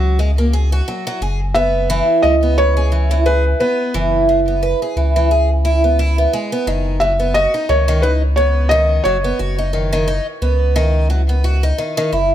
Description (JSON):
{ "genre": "folktronica", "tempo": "88 BPM", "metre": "4/4", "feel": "swing 56% on 16ths", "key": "unclear", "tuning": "A4 = 442 Hz", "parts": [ { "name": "felt-muted upright piano", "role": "melody", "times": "0.0-11.1 s", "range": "B4 to E5", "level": "-18 LUFS", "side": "left 1 dB", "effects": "vintage 12-bit sampler grit, tape echo" }, { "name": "picked twelve-string acoustic guitar", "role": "arpeggios", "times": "0.0-12.3 s", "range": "D#3 to B4", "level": "-18 LUFS", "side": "right 1 dB", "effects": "tape echo" }, { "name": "warm sub bass", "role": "bass", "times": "0.0-12.3 s", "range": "F#1 to C#2", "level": "-16 LUFS", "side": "equal", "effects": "none" } ], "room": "small room ambience", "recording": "none", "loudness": "-14 LUFS", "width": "side -11 dB against mid", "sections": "0.0-12.3 A section", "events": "none", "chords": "0.0 F#add9; 1.2 E/F#; 6.7 Badd9/F#" }